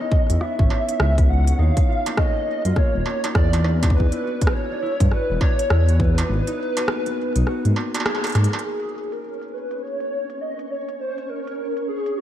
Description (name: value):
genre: IDM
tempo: 102 BPM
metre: 4/4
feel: swing 62% on 16ths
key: unclear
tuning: A4 = 440 Hz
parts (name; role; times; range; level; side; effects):
- warbly nostalgic lead; melody; 0.0-12.2 s; F#4 to F#5; -26 LUFS; equal; ensemble chorus, ping-pong delay
- concert harp; arpeggios; 0.0-11.7 s; A#3 to G#4; -29 LUFS; equal; ping-pong delay
- electronic kick drum; drums; 0.1-6.1 s; none; -19 LUFS; equal; none
- dark detuned saw bass; bass; 0.3-8.5 s; D#1 to G#2; -18 LUFS; equal; none
- industrial drum kit; drums; 0.3-12.2 s; hi-hat, rim click, struck metal; -27 LUFS; right 2 dB; low-pass filter on perc, low-pass filter on hats, low-pass filter on snare
- flickering grainy texture; texture; 9.1-12.2 s; C#4 to C#5; -34 LUFS; right 2 dB; built-in reverb
room: light reverb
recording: dark, warm production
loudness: -19 LUFS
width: side -11 dB against mid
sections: 0.0-8.6 A section; 8.6-12.2 B section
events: break 6.3-8.6; band accent 8.1; drum fill 8.4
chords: 0.0 C#m9; 1.6 D#7sus2; 3.6 E7sus2; 6.3 G#m9; 8.6 N.C.